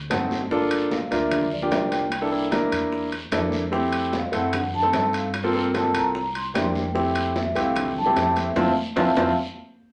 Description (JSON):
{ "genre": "Afro-Cuban jazz", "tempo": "149 BPM", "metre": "4/4", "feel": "straight", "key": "F major", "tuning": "A4 = 440 Hz", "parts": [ { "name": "upright bass", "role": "bass", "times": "0.0-9.3 s", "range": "G1 to G2", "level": "-35 LUFS", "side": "equal", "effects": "none" }, { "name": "warm concert grand piano", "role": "accompaniment", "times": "0.1-9.3 s", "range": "A3 to A5", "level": "-26 LUFS", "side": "equal", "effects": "none" }, { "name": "bongos", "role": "percussion", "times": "0.1-9.3 s", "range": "none", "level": "-38 LUFS", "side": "equal", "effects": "none" }, { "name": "congas", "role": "percussion", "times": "0.1-9.3 s", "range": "none", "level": "-36 LUFS", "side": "equal", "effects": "none" }, { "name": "guiro", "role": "percussion", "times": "0.1-9.3 s", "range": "none", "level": "-41 LUFS", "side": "equal", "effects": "none" }, { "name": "timbales", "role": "percussion", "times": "0.1-9.3 s", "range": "none", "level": "-32 LUFS", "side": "equal", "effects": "none" }, { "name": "vibraphone with soft mallets", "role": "melody", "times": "0.9-9.3 s", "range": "D5 to C6", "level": "-28 LUFS", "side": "equal", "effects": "none" } ], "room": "wet club reverb, RT60 0.6 s", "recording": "none", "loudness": "-23 LUFS", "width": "mono", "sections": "0.0-9.9 A section", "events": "grand piano fill 0.0-0.5; band accent 8.6-9.9", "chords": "0.0 D7b9 (rootless); 0.5 Gm7; 2.1 C13; 3.7 Fmaj9; 4.5 F#dim7; 5.3 Gm11; 6.1 C9; 7.0 Fmaj9" }